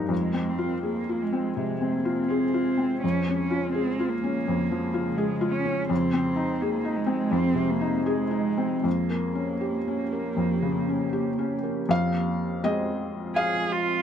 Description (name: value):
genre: neoclassical piano and strings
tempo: 82 BPM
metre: 4/4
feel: rubato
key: F minor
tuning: A4 = 440 Hz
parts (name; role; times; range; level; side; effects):
- felt-muted upright piano; accompaniment; 0.0-14.0 s; F2 to F5; -26 LUFS; left 2 dB; none
- glassy FM pad; sustained chords; 0.0-14.0 s; Db3 to Bb4; -32 LUFS; left 1 dB; ensemble chorus, built-in reverb
- warm cello; second line; 0.1-14.0 s; Ab3 to Ab4; -29 LUFS; right 5 dB; none
room: light reverb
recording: dark, warm production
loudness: -24 LUFS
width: side -8 dB against mid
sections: 0.1-11.9 A section; 11.9-14.0 B section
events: none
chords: 0.1 Fm; 3.0 Db/F; 5.9 Ab/F; 8.9 Gdim/F; 11.9 Fm